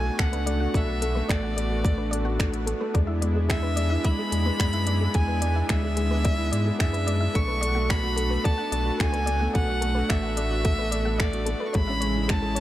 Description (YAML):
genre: piano and strings electronica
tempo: 109 BPM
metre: 4/4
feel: straight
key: B dorian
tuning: A4 = 440 Hz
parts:
  - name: warm violin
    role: melody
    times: 0.0-12.6 s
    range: D5 to C#6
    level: -30 LUFS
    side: equal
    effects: shimmer reverb
  - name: lush unison pad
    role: sustained chords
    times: 0.0-12.6 s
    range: C#3 to F#4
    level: -34 LUFS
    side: equal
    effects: chorus, shimmer reverb
  - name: felt-muted upright piano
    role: riff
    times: 0.0-12.6 s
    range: G#3 to A4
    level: -29 LUFS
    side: equal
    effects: shimmer reverb
  - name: warm sub bass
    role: bass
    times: 0.0-12.6 s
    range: A1 to G#2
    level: -27 LUFS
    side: equal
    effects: tube saturation, sidechain pumping
  - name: soft round pluck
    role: arpeggios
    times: 0.2-12.6 s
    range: G#4 to F#5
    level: -37 LUFS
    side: left 3 dB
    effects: chorus, sidechain pumping, digital delay, shimmer reverb
  - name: electronic kick drum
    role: drums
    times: 0.2-12.4 s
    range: none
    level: -24 LUFS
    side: equal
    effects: none
  - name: organic electronic drum kit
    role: drums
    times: 0.2-12.6 s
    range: finger snaps, hi-hat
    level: -32 LUFS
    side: equal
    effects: none
room: light reverb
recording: none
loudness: -22 LUFS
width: side -14 dB against mid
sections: 0.0-12.6 A section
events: none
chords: 0.0 Bm7; 2.9 E7; 7.3 Bm7; 11.7 Amaj7